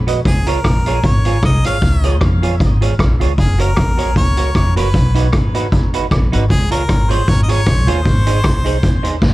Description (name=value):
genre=ska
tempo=154 BPM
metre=4/4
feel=swing 55% on 8ths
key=Db major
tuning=A4 = 440 Hz
part: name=upright bass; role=bass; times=0.0-9.3 s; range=Gb1 to F2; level=-16 LUFS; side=equal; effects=none
part: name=semi-hollow electric guitar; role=accompaniment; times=0.1-9.2 s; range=Eb4 to Eb5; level=-21 LUFS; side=right 6 dB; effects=wide subtle chorus
part: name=street-band drum kit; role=drums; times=0.1-9.3 s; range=hi-hat, kick drum, rim click, snare drum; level=-15 LUFS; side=equal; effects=none
part: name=bright harmonica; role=melody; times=0.3-9.2 s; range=Ab4 to F5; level=-22 LUFS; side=left 1 dB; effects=dub echo
room=little or no reverb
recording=dark, warm production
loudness=-12 LUFS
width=side -18 dB against mid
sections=0.0-9.3 A section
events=none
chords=0.3 Db; 3.4 Gb; 4.9 Cb; 6.5 Db; 8.1 Ab